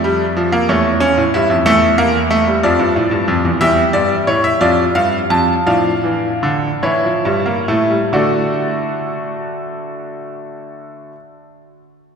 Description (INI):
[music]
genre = classical, baroque-style 4-part fugue for grand piano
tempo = 44-62 BPM (dotted quarters)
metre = 6/8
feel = straight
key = D minor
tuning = A4 = 440 Hz
[part]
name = bright concert grand piano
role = solo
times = 0.0-11.1 s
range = E2 to A5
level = -13 LUFS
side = equal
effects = none
[sound]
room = wet church reverb, RT60 3.4 s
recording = recorded in a church or concert hall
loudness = -13 LUFS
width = side -6 dB against mid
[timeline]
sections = 0.0-8.1 A section; 8.1-12.2 B section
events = slowing down 2.6-8.1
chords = 0.0 Dm/F; 0.7 A/E; 1.7 A5/E; 2.6 Dm/F; 3.6 A7/E; 4.6 Dm/F; 5.7 Dm/A; 6.8 A7; 8.1 D